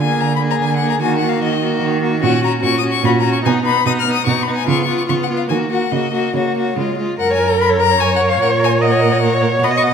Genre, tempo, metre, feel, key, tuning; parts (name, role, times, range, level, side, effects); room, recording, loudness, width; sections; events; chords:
quick classical-period movement for string quartet; 147 BPM; 3/4; straight; F# major; A4 = 440 Hz
rich violin; melody; 0.0-9.9 s; C#5 to E#6; -20 LUFS; left 9 dB
clear violin; second line; 0.0-9.9 s; D#4 to F#5; -20 LUFS; left 4 dB
warm viola; accompaniment; 0.0-9.9 s; G#3 to D#5; -20 LUFS; right 3 dB
warm cello; bass; 0.0-9.9 s; F#2 to Eb3; -19 LUFS; right 5 dB
wet recital hall reverb, RT60 1.4 s; -14 LUFS; side -7 dB against mid
0.0-7.2 A section; 7.2-9.9 B section
0.0 Bb7/D; 1.0 Ebm; 2.2 F#/A#; 3.4 B; 4.7 C#7; 5.5 D#m; 5.9 F#/C#; 6.8 C#; 7.2 F#; 8.4 F#/A#